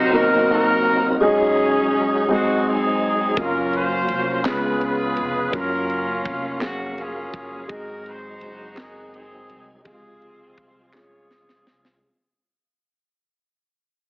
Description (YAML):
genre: slow gospel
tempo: 56 BPM (dotted quarters)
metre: 6/8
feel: straight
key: Db major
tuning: A4 = 439 Hz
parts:
  - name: warm horn section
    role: melody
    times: 0.0-12.0 s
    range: C4 to Db5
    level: -23 LUFS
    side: equal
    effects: plate reverb
  - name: warm upright piano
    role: accompaniment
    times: 0.0-12.0 s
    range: Ab2 to F5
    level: -22 LUFS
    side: equal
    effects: none
  - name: tonewheel organ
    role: sustained chords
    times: 0.0-12.0 s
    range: F3 to F5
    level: -26 LUFS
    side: equal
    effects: slow rotary speaker, chorus vibrato
  - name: upright bass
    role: bass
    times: 3.4-12.0 s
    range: F1 to Db2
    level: -37 LUFS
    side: equal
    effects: none
  - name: tight funk drum kit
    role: drums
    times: 3.4-12.0 s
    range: kick drum, ride cymbal, snare drum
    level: -32 LUFS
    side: equal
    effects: none
  - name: group handclap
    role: percussion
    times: 4.5-11.3 s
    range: none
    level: -31 LUFS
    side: equal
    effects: none
room: wet large studio reverb, RT60 1.0 s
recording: heavily compressed radio sound, multiband compression, AM radio sound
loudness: -18 LUFS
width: side -40 dB against mid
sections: 0.0-12.0 A section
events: fade-out 0.0-12.0; drum fill 10.9-12.0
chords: 0.0 Cm7b5; 1.2 Ab7sus4; 2.3 Ab7; 3.4 Gbmaj7; 4.5 Db7; 5.5 Gbmaj7; 7.7 Ab7; 9.9 Dbmaj7